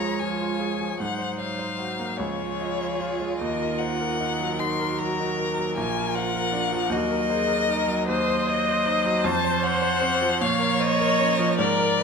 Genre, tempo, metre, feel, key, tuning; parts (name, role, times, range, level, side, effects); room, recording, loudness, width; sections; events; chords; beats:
classical, slow romantic movement for piano quintet; 51 BPM (dotted quarters); 6/8; rubato; Bb minor from 8.1 s; A4 = 441 Hz
warm violin; melody; 0.0-12.0 s; C5 to C6; -26 LUFS; left 7 dB
rich violin; second line; 0.0-12.0 s; Ab4 to Db5; -33 LUFS; left 4 dB
warm cello; second line; 0.0-12.0 s; Eb3 to Ab3; -32 LUFS; right 8 dB
clear concert grand piano; accompaniment; 0.0-12.0 s; Bb1 to Eb5; -28 LUFS; right 2 dB
warm viola; accompaniment; 0.0-12.0 s; Eb4 to Eb5; -29 LUFS; right 4 dB
moderate recital hall reverb, RT60 1.5 s; -22 LUFS; side -5 dB against mid
0.0-12.0 A section
0.0 Db; 1.0 Ab13; 2.2 Db; 3.4 Ebm; 5.8 Bb; 6.9 Ebm; 8.1 Cdim/Eb; 9.3 F5; 10.4 Bbm
| 0.99 2.18 | 3.38 4.59 | 5.78 6.92 | 8.09 9.25 | 10.41 11.59